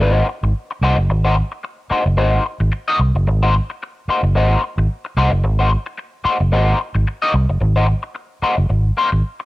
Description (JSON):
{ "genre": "funk", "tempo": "110 BPM", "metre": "4/4", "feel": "swing 56% on 16ths", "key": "Ab mixolydian", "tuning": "A4 = 440 Hz", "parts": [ { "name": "electric guitar at the edge of break-up", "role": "accompaniment", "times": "0.0-9.4 s", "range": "Bb3 to Eb5", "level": "-19 LUFS", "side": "left 2 dB", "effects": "wah" }, { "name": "fingered electric bass", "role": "bass", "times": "0.0-9.2 s", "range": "Gb1 to C2", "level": "-15 LUFS", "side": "equal", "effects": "none" } ], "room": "little or no reverb", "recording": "none", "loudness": "-15 LUFS", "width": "side -18 dB against mid", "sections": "0.0-9.5 A section", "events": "none", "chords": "0.0 Ab9", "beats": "0.01 0.55 | 1.09 1.64 2.18 2.72 | 3.27 3.81 4.35 4.89 | 5.44 5.98 6.52 7.07 | 7.61 8.15 8.70 9.24" }